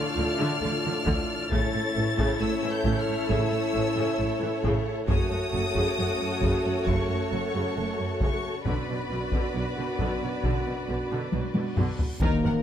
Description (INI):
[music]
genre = cinematic, epic orchestral film score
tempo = 67 BPM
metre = 4/4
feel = straight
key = unclear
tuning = A4 = 440 Hz
[part]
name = rich symphonic violin section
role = melody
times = 0.0-12.6 s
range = Bb4 to A6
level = -34 LUFS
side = left 3 dB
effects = none
[part]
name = rich symphonic violin section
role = second line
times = 0.0-12.5 s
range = Eb4 to Gb5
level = -34 LUFS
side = left 3 dB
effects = none
[part]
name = rich symphonic viola section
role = accompaniment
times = 0.0-12.5 s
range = C#3 to Bb4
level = -33 LUFS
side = equal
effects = none
[part]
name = bright trombone section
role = sustained chords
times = 0.0-12.6 s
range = F#2 to Eb4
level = -34 LUFS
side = right 3 dB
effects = none
[part]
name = mellow French horn section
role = sustained chords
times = 0.0-12.6 s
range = Bb3 to F#4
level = -33 LUFS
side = left 3 dB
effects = none
[part]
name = dark symphonic cello section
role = bass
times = 0.0-12.5 s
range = F#2 to Eb3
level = -32 LUFS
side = right 3 dB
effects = none
[part]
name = rich symphonic double bass section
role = bass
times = 0.2-12.3 s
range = F#1 to Eb2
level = -33 LUFS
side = right 3 dB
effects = none
[part]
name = taiko ensemble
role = drums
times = 1.1-12.6 s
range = none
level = -29 LUFS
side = left 1 dB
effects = none
[part]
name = reverse cymbal and impact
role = sound effects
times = 11.7-12.6 s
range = none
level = -40 LUFS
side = equal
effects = none
[part]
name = timpani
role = percussion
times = 12.2-12.6 s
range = Eb3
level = -27 LUFS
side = equal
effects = none
[sound]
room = light reverb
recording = close, detailed microphones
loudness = -24 LUFS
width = side -9 dB against mid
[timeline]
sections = 0.0-12.2 A section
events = drum fill 11.3-12.2; reverse cymbal 11.7-12.2; impact 12.2-12.6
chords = 0.0 Dm; 1.5 A; 5.1 F#m; 8.7 Bm